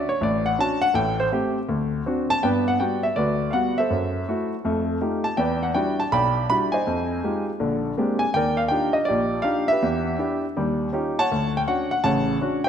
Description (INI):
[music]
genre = solo jazz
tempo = 162 BPM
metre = 4/4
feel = swing 65% on 8ths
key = D major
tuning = A4 = 439 Hz
[part]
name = warm grand piano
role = solo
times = 0.0-12.7 s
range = A1 to B5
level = -20 LUFS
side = equal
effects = none
[sound]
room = moderate scoring stage reverb, RT60 1.6 s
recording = none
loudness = -20 LUFS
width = side -8 dB against mid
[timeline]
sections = 0.0-2.4 A section; 2.4-12.7 B section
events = grand piano solo 0.0-2.4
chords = 0.0 Dmaj7; 0.9 Am7; 1.7 D7; 2.4 Gmaj7; 3.9 F#m7b5; 4.6 F9; 5.4 Em9; 6.9 Fm9; 7.6 Bb13; 8.3 Ebmaj9; 9.8 Em7; 10.6 Eb9; 11.3 Dmaj7